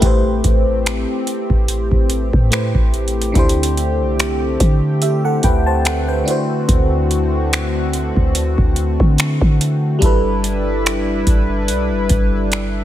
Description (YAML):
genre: contemporary R&B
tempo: 72 BPM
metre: 4/4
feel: swing 54% on 16ths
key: unclear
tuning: A4 = 440 Hz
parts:
  - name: FM electric piano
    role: accompaniment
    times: 0.0-12.8 s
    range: D3 to A5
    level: -21 LUFS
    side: left 1 dB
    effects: chorus, phaser
  - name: chorused pulse-width pad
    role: sustained chords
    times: 0.0-12.8 s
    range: D3 to B4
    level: -22 LUFS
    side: equal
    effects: none
  - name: clean 808-style bass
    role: bass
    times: 0.0-12.8 s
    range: G1 to D3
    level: -19 LUFS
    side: equal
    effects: none
  - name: booming analog drum machine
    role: drums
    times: 0.0-12.7 s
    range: finger snaps, hi-hat, kick drum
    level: -17 LUFS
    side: equal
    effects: none
room: digital ambience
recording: none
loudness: -14 LUFS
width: side -12 dB against mid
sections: 0.0-12.8 A section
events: none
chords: 0.0 Am7; 3.4 D7sus4; 6.3 D7; 10.0 G6